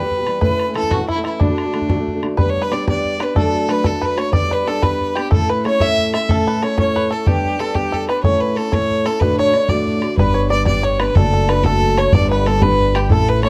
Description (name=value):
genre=celtic folk, Celtic jig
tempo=123 BPM (dotted quarters)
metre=6/8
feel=straight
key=unclear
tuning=A4 = 440 Hz
part: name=clear fiddle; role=melody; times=0.0-13.5 s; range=D4 to E5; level=-22 LUFS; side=equal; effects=tape echo
part: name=bluegrass banjo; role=second line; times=0.0-13.5 s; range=D4 to E5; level=-28 LUFS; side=equal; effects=none
part: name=fingerpicked old ladder-braced acoustic guitar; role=accompaniment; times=0.0-13.5 s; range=D2 to A4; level=-24 LUFS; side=equal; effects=none
part: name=bodhran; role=percussion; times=0.1-13.5 s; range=none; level=-22 LUFS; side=equal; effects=none
part: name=upright bass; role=bass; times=10.2-13.5 s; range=F#1 to A1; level=-20 LUFS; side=equal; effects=none
room=small room ambience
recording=dry, close 1970s-style studio recording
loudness=-17 LUFS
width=mono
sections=0.0-2.4 A section; 2.4-10.2 B section; 10.2-13.5 B section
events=none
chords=0.4 A; 1.4 D; 2.4 G; 3.4 D/F#; 4.3 G; 5.3 A; 7.3 G; 8.2 A; 9.2 D; 10.2 G; 11.2 D/F#; 12.1 G